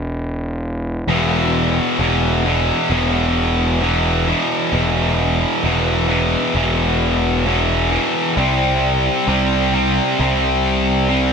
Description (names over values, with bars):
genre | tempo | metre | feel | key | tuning
post-rock | 66 BPM | 4/4 | straight | E minor | A4 = 440 Hz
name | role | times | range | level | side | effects
fuzz picked electric bass | bass | 0.0-11.3 s | E1 to C2 | -20 LUFS | equal | overdrive
tight distorted guitar | riff | 1.1-11.3 s | E2 to C4 | -16 LUFS | equal | distortion
room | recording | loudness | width
light reverb | none | -15 LUFS | side -6 dB against mid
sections
0.0-1.1 A section; 1.1-11.3 B section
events
none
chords
0.0 N.C.; 1.1 E5; 8.4 C5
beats
0.17 | 1.08 2.00 2.91 3.82 | 4.73 5.64 6.55 7.46 | 8.37 9.28 10.19 11.10